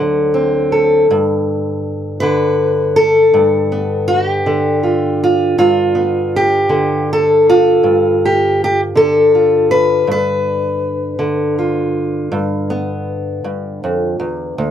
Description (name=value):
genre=acoustic country blues, solo or duo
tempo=54 BPM (dotted quarters)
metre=12/8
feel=straight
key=unclear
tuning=A4 = 445 Hz
part: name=fingerpicked old ladder-braced acoustic guitar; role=solo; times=0.0-14.7 s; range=D2 to B4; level=-12 LUFS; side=equal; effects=none
room=light reverb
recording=dry, close 1970s-style studio recording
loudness=-12 LUFS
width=side -9 dB against mid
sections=0.0-14.7 A section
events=none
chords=0.0 D7; 1.1 G7